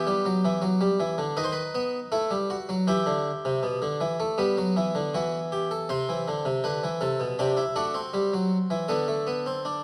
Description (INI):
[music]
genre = classical, baroque-style 3-part fugue for harpsichord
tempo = 80 BPM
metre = 4/4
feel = straight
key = E minor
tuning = A4 = 440 Hz
[part]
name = harpsichord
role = solo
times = 0.0-9.8 s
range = B2 to C5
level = -27 LUFS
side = equal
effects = none
[sound]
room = moderate recital hall reverb, RT60 1.4 s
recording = none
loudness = -27 LUFS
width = mono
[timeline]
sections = 0.0-5.9 A section; 5.9-9.8 B section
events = none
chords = 0.0 Em; 1.4 B7/D#; 2.9 Em; 8.9 D5